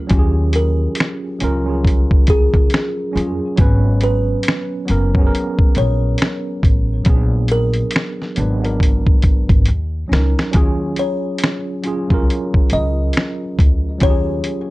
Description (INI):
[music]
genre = lo-fi hip hop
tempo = 69 BPM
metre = 4/4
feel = swing 60% on 16ths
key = Eb minor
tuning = A4 = 440 Hz
[part]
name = tine electric piano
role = accompaniment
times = 0.0-14.7 s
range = F3 to Cb5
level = -22 LUFS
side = right 1 dB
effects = medium stereo tremolo
[part]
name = upright bass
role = bass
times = 0.0-14.4 s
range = Gb1 to F2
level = -18 LUFS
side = equal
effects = none
[part]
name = lo-fi sampler-style drum kit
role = drums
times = 0.1-14.7 s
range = finger snaps, hi-hat, kick drum, snare drum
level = -15 LUFS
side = equal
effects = vintage 12-bit sampler grit
[part]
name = kalimba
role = melody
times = 0.6-14.7 s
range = Ab4 to Eb5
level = -23 LUFS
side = left 1 dB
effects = none
[sound]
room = little or no reverb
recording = cassette tape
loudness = -14 LUFS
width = side -19 dB against mid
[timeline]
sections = 0.0-10.5 A section; 10.5-14.7 B section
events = drum fill 9.7-10.5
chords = 0.0 Ebm11; 3.6 Abm11; 7.1 Bb7b9b13; 9.7 Ebm7; 10.5 Ebm11